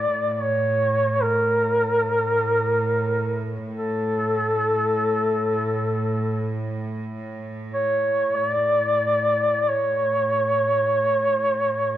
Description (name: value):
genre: caucasian folk, Caucasian lament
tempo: free time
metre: none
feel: none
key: unclear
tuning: A4 = 440 Hz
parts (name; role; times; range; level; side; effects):
- warm duduk; melody; 0.0-12.0 s; A4 to D5; -20 LUFS; equal; none
- clear symphonic cello section; drone; 0.0-12.0 s; A2; -28 LUFS; right 2 dB; none
room: moderate scoring stage reverb, RT60 1.4 s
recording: worn, warbling old tape, cassette tape, warbly pitch drift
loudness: -20 LUFS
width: side -12 dB against mid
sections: 0.0-12.0 A section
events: none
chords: none